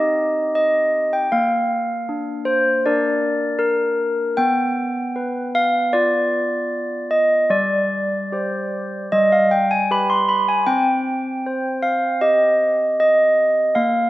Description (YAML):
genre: classical, tune for handbells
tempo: 78 BPM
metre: 4/4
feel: straight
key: C minor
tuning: A4 = 440 Hz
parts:
  - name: handbells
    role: solo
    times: 0.0-14.1 s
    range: G3 to C6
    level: -16 LUFS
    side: equal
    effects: none
room: moderate scoring stage reverb, RT60 1.7 s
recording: none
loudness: -16 LUFS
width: side -16 dB against mid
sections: 0.0-14.1 A section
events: none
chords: 0.0 Cm; 1.3 Bb; 4.4 G7/B; 7.5 Gsus4; 9.1 G; 10.7 Cm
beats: 0.54 | 1.31 2.08 2.84 3.60 | 4.38 5.16 5.93 6.70 | 7.50 8.31 9.10 9.90 | 10.69 11.47 12.23 13.00 | 13.76